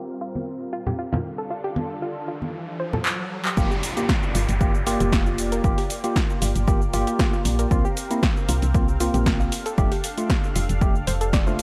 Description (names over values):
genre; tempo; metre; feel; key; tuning
deep house; 116 BPM; 4/4; straight; G minor; A4 = 440 Hz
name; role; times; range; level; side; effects
warm analog pad; sustained chords; 0.0-11.6 s; G3 to F5; -36 LUFS; equal; chorus, sidechain pumping
riser and downlifter; sound effects; 1.3-7.7 s; none; -36 LUFS; equal; none
soft round pluck; arpeggios; 0.2-11.5 s; F4 to D5; -35 LUFS; equal; chorus, sidechain pumping, delay
congas; percussion; 0.4-3.0 s; none; -30 LUFS; equal; none
punchy analog drum machine; drums; 3.1-11.6 s; handclaps, hi-hat, shaker, snare drum; -30 LUFS; equal; overdrive
tine electric piano; stabs; 3.6-11.6 s; A3 to G4; -30 LUFS; equal; overdrive, sidechain pumping, delay
woody FM bass; bass; 3.6-11.6 s; F1 to C2; -26 LUFS; equal; sidechain pumping
electronic kick drum; drums; 3.6-11.4 s; none; -24 LUFS; equal; overdrive
room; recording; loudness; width
light reverb; low-pass filter; -23 LUFS; mono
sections
0.0-3.6 A section; 3.6-11.6 B section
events
filter sweep on analog synth pad 0.0-3.6; filter sweep on synth arpeggio sound 0.0-3.6; filter sweep 0.0-3.6; riser 1.5-3.6; drum fill 3.1-3.6; drop 3.6-11.6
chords
0.0 C7sus4; 1.2 F69; 3.6 Gm7; 7.7 C7sus4; 9.5 F69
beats
0.47 0.99 | 1.50 2.02 2.54 3.06 | 3.57 4.09 4.61 5.12 | 5.64 6.16 6.68 7.19 | 7.71 8.23 8.75 9.26 | 9.78 10.30 10.81 11.33